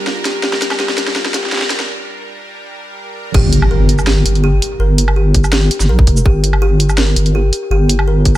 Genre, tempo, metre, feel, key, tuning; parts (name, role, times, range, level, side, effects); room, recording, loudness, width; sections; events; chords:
half-time drum and bass; 165 BPM; 4/4; half-time; G minor; A4 = 442 Hz
bowed-like drone; sustained chords; 0.0-3.3 s; G3 to Bb4; -26 LUFS; right 3 dB; built-in reverb, phaser, sidechain pumping
kalimba; arpeggios; 0.0-8.4 s; F4 to Bb4; -20 LUFS; left 1 dB; dub echo
drum and bass drum kit; drums; 0.1-8.4 s; crash cymbal, hi-hat, shaker, snare drum, woodblock; -18 LUFS; right 1 dB
deep soft wobble bass; bass; 3.3-8.4 s; F1 to Bb1; -12 LUFS; equal; chorus
electronic kick drum; drums; 3.3-8.3 s; -11 LUFS; equal
impact; sound effects; 3.3-4.8 s; -19 LUFS; equal
digital ambience; high-pass filter; -11 LUFS; side -15 dB against mid
0.0-3.3 A section; 3.3-8.4 B section
build-up 0.0-3.3; drum fill 0.0-1.9; filter sweep on kalimba 0.0-3.3; break 1.9-3.3; drop 3.3-8.4; impact 3.3-4.8
0.0 G5